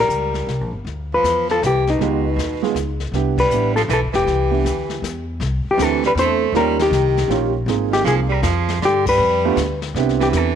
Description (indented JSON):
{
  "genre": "jazz, small-group swing and bop",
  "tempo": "158 BPM",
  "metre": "3/4",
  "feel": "swing 64% on 8ths",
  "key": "C major",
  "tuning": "A4 = 440 Hz",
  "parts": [
    { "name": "hollow-body jazz guitar", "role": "melody", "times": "0.0-10.6 s", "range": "Eb4 to C5", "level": "-19 LUFS", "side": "left 3 dB", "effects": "slapback echo" },
    { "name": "bright tenor saxophone", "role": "second line", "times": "0.0-10.6 s", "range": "B2 to A3", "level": "-24 LUFS", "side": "right 11 dB", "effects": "slapback echo" },
    { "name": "upright bass", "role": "bass", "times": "0.0-10.6 s", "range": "E1 to G2", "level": "-22 LUFS", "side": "left 1 dB", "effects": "none" },
    { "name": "jazz brush drum kit", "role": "drums", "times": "0.1-10.6 s", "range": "brushed snare drum, crash cymbal, hi-hat, kick drum, ride cymbal, snare drum", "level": "-29 LUFS", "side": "left 8 dB", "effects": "none" },
    { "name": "warm concert grand piano", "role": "accompaniment", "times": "2.0-10.6 s", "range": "Ab3 to A4", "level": "-22 LUFS", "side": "right 13 dB", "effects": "none" }
  ],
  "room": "light reverb, small room reverb",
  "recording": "1960s-style stereo with parts hard left and right",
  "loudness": "-16 LUFS",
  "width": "side -8 dB against mid",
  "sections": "0.0-5.4 A section; 5.4-10.6 B section",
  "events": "band accent 3.3, 9.0",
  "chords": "0.0 Gdim; 0.9 Dm9; 2.0 Db7#11; 3.1 Cmaj9; 5.4 C69; 6.5 Eb7; 7.7 Ab6; 8.8 G7; 9.9 Cmaj7"
}